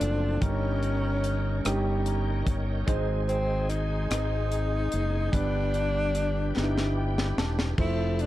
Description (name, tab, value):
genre	slow gospel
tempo	49 BPM (dotted quarters)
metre	6/8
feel	straight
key	unclear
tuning	A4 = 440 Hz
part	breathy tenor saxophone	melody	0.0-8.3 s	C4 to E4	-31 LUFS	left 1 dB	none
part	clear concert grand piano	accompaniment	0.0-8.3 s	G2 to Bb5	-32 LUFS	right 1 dB	none
part	bright tonewheel organ	sustained chords	0.0-8.3 s	F3 to A5	-38 LUFS	right 1 dB	fast rotary speaker, overdrive, chorus vibrato
part	fingered electric bass	bass	0.0-8.3 s	E1 to Ab1	-28 LUFS	equal	none
part	tight funk drum kit	drums	0.0-8.3 s	crash cymbal, hi-hat, kick drum, rim click, snare drum	-30 LUFS	equal	none
room	light reverb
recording	dark, warm production, faint mains hum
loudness	-25 LUFS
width	side -15 dB against mid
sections	0.0-8.3 A section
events	grand piano fill 1.6-2.9, 6.6-7.8; drum fill 6.6-7.8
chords	0.4 Eb7/G; 2.9 Ab; 5.3 G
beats	| 0.42 1.65 | 2.88 4.10 | 5.33 6.55 | 7.78